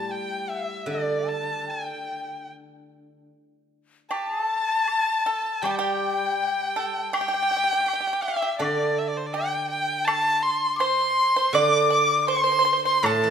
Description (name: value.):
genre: chinese traditional, Chinese chamber ensemble.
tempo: 70-83 BPM.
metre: 4/4.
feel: rubato.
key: G zhi mode.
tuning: A4 = 443 Hz.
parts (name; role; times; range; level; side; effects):
clear erhu; melody; 0.0-13.3 s; C5 to D6; -25 LUFS; right 1 dB; none.
breathy large dizi; second line; 0.0-13.3 s; D5 to D6; -27 LUFS; left 7 dB; none.
steel-string zither; accompaniment; 0.0-13.3 s; A2 to G3; -29 LUFS; right 3 dB; none.
pipa; second line; 4.1-13.3 s; D4 to D5; -27 LUFS; right 6 dB; none.
woodblock; percussion; 4.1-13.2 s; none; -31 LUFS; left 2 dB; none.
room: moderate recital hall reverb, RT60 1.6 s.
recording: minimal, uncompressed stereo recording.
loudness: -21 LUFS.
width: side -7 dB against mid.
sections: 0.0-4.1 A section; 4.1-13.3 B section.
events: none.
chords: none.